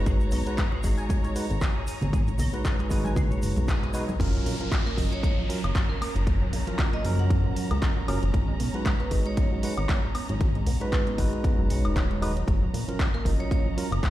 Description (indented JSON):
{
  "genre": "nu-disco, nu disco",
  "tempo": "116 BPM",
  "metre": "4/4",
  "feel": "swing 55% on 16ths",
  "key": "unclear",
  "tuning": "A4 = 438 Hz",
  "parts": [
    { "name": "bright tine electric piano", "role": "accompaniment", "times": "0.0-13.9 s", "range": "E#3 to D#5", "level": "-33 LUFS", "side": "right 1 dB", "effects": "sidechain pumping, tape echo" },
    { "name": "rich chamber violin section", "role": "sustained chords", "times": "0.0-14.1 s", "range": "C#4 to A#5", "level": "-39 LUFS", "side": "right 1 dB", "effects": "sidechain pumping" },
    { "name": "chorused synth bass", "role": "bass", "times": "0.0-14.0 s", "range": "D#1 to C#2", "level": "-26 LUFS", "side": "equal", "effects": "tube saturation" },
    { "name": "electric guitar with an envelope filter", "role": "riff", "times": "0.1-4.1 s", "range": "G#4 to G#5", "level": "-40 LUFS", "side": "left 2 dB", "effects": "ensemble chorus, vintage 12-bit sampler grit, tape echo" },
    { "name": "electronic kick drum", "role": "drums", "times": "0.1-14.1 s", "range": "none", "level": "-25 LUFS", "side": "equal", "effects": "overdrive" },
    { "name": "house drum kit", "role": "drums", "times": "0.1-14.1 s", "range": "crash cymbal, handclaps, hi-hat, woodblock", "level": "-35 LUFS", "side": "equal", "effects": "overdrive" },
    { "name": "tube shaker and congas", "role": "percussion", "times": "0.1-4.2 s", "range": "none", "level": "-34 LUFS", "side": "right 3 dB", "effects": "none" },
    { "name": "analog pluck", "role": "arpeggios", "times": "4.2-14.1 s", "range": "E#3 to D#4", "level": "-36 LUFS", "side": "right 4 dB", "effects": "chorus, sidechain pumping, tape echo" },
    { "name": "downlifter", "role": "sound effects", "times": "4.2-8.3 s", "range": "none", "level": "-39 LUFS", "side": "equal", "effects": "none" },
    { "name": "vibraphone with hard mallets", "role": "melody", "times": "4.9-13.6 s", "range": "A#4 to F#5", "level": "-38 LUFS", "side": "right 2 dB", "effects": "tape echo" }
  ],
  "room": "digital ambience",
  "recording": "played on a big sound system in a bare room, large studio reverb",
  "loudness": "-23 LUFS",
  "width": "side -14 dB against mid",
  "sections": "0.0-4.2 A section; 4.2-14.1 B section",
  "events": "filter sweep on clean electric guitar 0.0-4.2; band accent 3.7; drop 4.2-14.1",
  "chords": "0.1 G#m7; 4.2 F#maj7; 8.3 G#m7; 12.5 F#maj7"
}